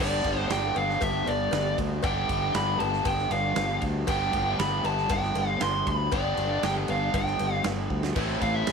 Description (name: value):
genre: classic rock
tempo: 118 BPM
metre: 4/4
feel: straight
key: unclear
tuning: A4 = 440 Hz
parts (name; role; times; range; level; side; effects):
- fuzz lead guitar; melody; 0.0-8.7 s; D5 to C6; -28 LUFS; right 1 dB; distortion
- raw garage guitar; riff; 0.0-8.7 s; G2 to G4; -30 LUFS; left 1 dB; overdrive
- fuzz fingered electric bass; bass; 0.0-8.7 s; G1 to D2; -30 LUFS; left 1 dB; overdrive
- big rock drum kit; drums; 0.2-8.7 s; crash cymbal, kick drum, ride cymbal, snare drum; -33 LUFS; right 3 dB; none
- cowbell; percussion; 0.7-8.3 s; none; -37 LUFS; left 14 dB; none
room: light reverb, small room ambience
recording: 1960s-style stereo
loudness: -24 LUFS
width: side -6 dB against mid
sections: 0.0-8.7 A section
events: drum fill 7.9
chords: 0.0 G; 8.2 Am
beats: 0.50 1.02 1.53 | 2.04 2.55 3.06 3.57 | 4.08 4.59 5.10 5.61 | 6.12 6.63 7.14 7.65 | 8.16 8.67